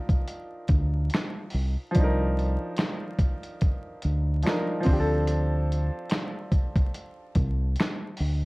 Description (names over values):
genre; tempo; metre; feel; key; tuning
lo-fi hip hop; 72 BPM; 4/4; swing 55% on 16ths; C dorian; A4 = 440 Hz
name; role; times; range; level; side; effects
bright upright piano; accompaniment; 0.0-8.4 s; F3 to Bb4; -31 LUFS; equal; cassette tape, plate reverb
dusty soul sampler-style drum kit; drums; 0.1-8.4 s; finger snaps, hi-hat, kick drum, snare drum; -25 LUFS; equal; vintage 12-bit sampler grit
deep dub fingered electric bass; bass; 0.7-8.4 s; C2 to D2; -24 LUFS; equal; none
room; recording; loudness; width
little or no reverb; worn, warbling old tape, cassette tape, vinyl crackle, warbly pitch drift; -24 LUFS; side -24 dB against mid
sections
0.0-8.4 A section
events
none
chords
0.0 Cm11; 4.9 Dm7